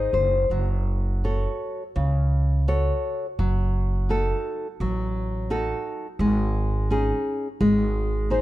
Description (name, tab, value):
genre	fado-style ballad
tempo	85 BPM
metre	4/4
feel	rubato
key	unclear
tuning	A4 = 440 Hz
part	nylon-string guitar	accompaniment	0.0-8.4 s	C#3 to D#5	-25 LUFS	left 1 dB	none
part	upright bass	bass	0.0-8.4 s	F#1 to C#2	-24 LUFS	right 1 dB	none
room	light reverb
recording	dark, warm production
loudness	-22 LUFS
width	side -15 dB against mid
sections	0.0-8.4 A section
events	nylon-string guitar fill 0.0-0.5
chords	0.0 G#; 0.5 F#m; 3.4 D#dim/F#; 6.2 G#sus4; 7.6 G#